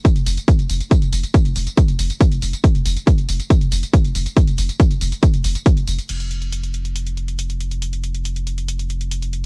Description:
driving peak-time techno; 139 BPM; 4/4; straight; A4 = 443 Hz
electronic kick drum; drums; 0.0-5.7 s; -14 LUFS; equal; overdrive, cassette tape
techno drum kit; drums; 0.0-9.4 s; crash cymbal, hi-hat, tambourine; -29 LUFS; equal; overdrive, cassette tape
saturated sub bass; bass; 0.2-9.5 s; F1; -23 LUFS; equal; overdrive, sidechain pumping, low-pass filter
little or no reverb; home recording on cassette, lossy compression artefacts; -16 LUFS; side -39 dB against mid
0.0-6.1 A section; 6.1-9.5 B section

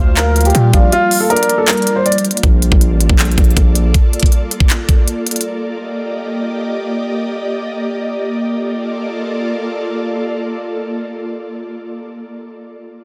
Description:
hip hop, trap; 159 BPM; 4/4; half-time; Bb major; A4 = 440 Hz
dark grand piano; melody; 0.0-2.2 s; F4 to D5; -18 LUFS; equal
warm velvety synth lead; second line; 0.0-2.4 s; D5 to F5; -25 LUFS; equal; chorus, tape echo
ethereal airy pad; sustained chords; 0.1-11.6 s; G3 to Eb5; -23 LUFS; equal; ensemble chorus, built-in reverb
distorted 808-style bass; bass; 0.0-3.9 s; A1 to Bb2; -16 LUFS; equal; distortion
trap drum kit; drums; 0.2-5.5 s; handclaps, hi-hat, kick drum; -15 LUFS; equal
light reverb; dense, heavily limited modern master; -15 LUFS; mono
0.0-2.4 A section; 2.4-8.5 B section; 8.5-11.5 C section
break 0.9-2.4
0.0 Gm7; 2.4 Bbmaj7; 5.5 Ebmaj7/Bb; 8.5 Bbmaj7

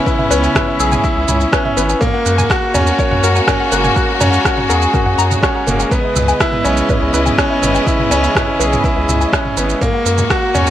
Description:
piano and strings electronica; 123 BPM; 4/4; straight; C# dorian; A4 = 441 Hz
warm studio string section; sustained chords; 0.0-10.7 s; C#3 to D#5; -20 LUFS; left 1 dB; sidechain pumping
bright upright piano; riff; 0.0-10.7 s; A#3 to C#5; -16 LUFS; equal; ping-pong delay
warbly dusty pluck; arpeggios; 0.1-10.7 s; A#4 to F#6; -23 LUFS; left 4 dB; chorus, cassette tape, sidechain pumping, ping-pong delay
deep house drum kit; drums; 0.1-10.7 s; rim click, shaker, toms; -20 LUFS; right 1 dB
electronic kick drum; drums; 0.1-10.4 s; -20 LUFS; equal
round analog bass; bass; 0.3-10.7 s; F#1 to F#2; -17 LUFS; equal; sidechain pumping
light reverb; -12 LUFS; side -12 dB against mid
0.0-10.7 A section
0.0 C#m7; 2.0 F#add9; 5.9 C#m7; 9.8 F#add9

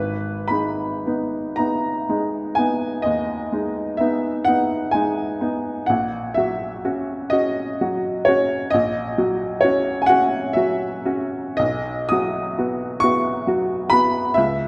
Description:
classical, romantic nocturne for solo piano; 33-45 BPM (dotted quarters); 12/8; rubato; G# minor; A4 = 440 Hz
clear upright piano; solo; 0.0-14.7 s; G#1 to D#6; -22 LUFS; equal
wet concert hall reverb, RT60 1.8 s; -22 LUFS; mono
0.0-14.7 A section
0.0 G#m; 5.9 F#/A#; 11.6 B

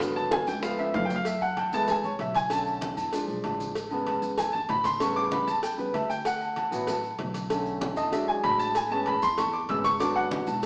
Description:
Afro-Cuban jazz; 192 BPM; 4/4; straight; A4 = 440 Hz
clear upright piano; accompaniment; 0.0-10.7 s; C#3 to E6; -29 LUFS; equal
upright bass; bass; 0.0-10.7 s; E1 to F#2; -40 LUFS; equal
bongos and cowbell; percussion; 0.0-10.7 s; -38 LUFS; equal
congas; percussion; 0.0-10.7 s; -43 LUFS; equal
maracas; percussion; 0.0-10.7 s; -48 LUFS; equal
timbales and agogo bells; percussion; 0.0-10.6 s; -36 LUFS; equal
wet stone room reverb, RT60 1.2 s; band playing live in one room, small speaker sound; -28 LUFS; mono
0.0-1.3 A section; 1.3-10.7 A section
upright piano solo 0.0-10.7; drum fill 0.5-1.3
0.0 G#m7b5; 0.6 C#aug7; 1.3 F#m11; 2.5 Bm9; 3.1 E7b9; 3.8 Amaj9; 5.0 A9; 6.3 D69; 7.5 Bm7; 8.1 E9; 8.8 Amaj9; 10.0 G#m7b5

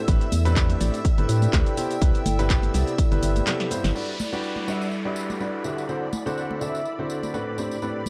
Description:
piano house; 124 BPM; 4/4; swing 55% on 16ths; G major; A4 = 439 Hz
string machine, violins; sustained chords; 0.0-8.1 s; D5 to E6; -40 LUFS; equal; ensemble chorus, vintage 12-bit sampler grit, sidechain pumping
warbly tape-like pad; texture; 0.0-8.1 s; G3 to G5; -34 LUFS; equal; chorus, built-in reverb, sidechain pumping
warm grand piano; riff; 0.1-8.0 s; G2 to F#5; -32 LUFS; equal; sidechain pumping
organ-like FM bass; bass; 0.1-3.9 s; G1 to A2; -25 LUFS; equal; sidechain pumping
electronic kick drum; drums; 0.1-3.1 s; -23 LUFS; equal
punchy analog drum machine; drums; 0.1-3.9 s; handclaps, hi-hat, shaker, snare drum; -32 LUFS; equal
tambourine and congas; percussion; 0.1-8.1 s; -38 LUFS; equal
downlifter; sound effects; 4.0-7.8 s; -39 LUFS; equal
breathy flute-like synth lead; melody; 4.7-7.1 s; E5 to F#5; -38 LUFS; equal; ensemble chorus, tape echo
digital ambience; dry, gritty hardware recording; -24 LUFS; mono
0.0-4.0 A section; 4.0-8.1 B section
break 3.5-4.0; drum fill 3.5-4.0; band accent 3.8
0.0 Am11; 4.0 Gmaj7; 5.9 D7; 7.6 Am11

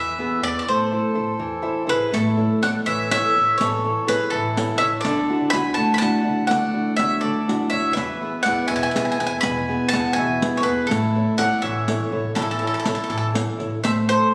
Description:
italian folk, Italian serenade; 82 BPM (dotted quarters); 6/8; straight; A major; A4 = 440 Hz
bowl-back mandolin; melody; 0.0-14.3 s; A4 to B5; -25 LUFS; equal
accordion; second line; 0.0-14.3 s; E4 to G#5; -33 LUFS; equal
nylon-string guitar; accompaniment; 0.0-14.3 s; B2 to E5; -26 LUFS; equal
upright bass; bass; 0.0-14.2 s; A1 to E2; -34 LUFS; equal
riq; percussion; 2.1-14.1 s; -31 LUFS; equal
wet scoring stage reverb, RT60 1.5 s; recorded on a phone in the room, club reverb; -21 LUFS; mono
0.0-2.1 A section; 2.1-13.8 B section
nylon-string guitar fill 1.4-2.1
0.0 E; 0.7 Am; 2.1 A; 5.0 Dadd9; 8.0 E; 10.9 A; 13.8 Am

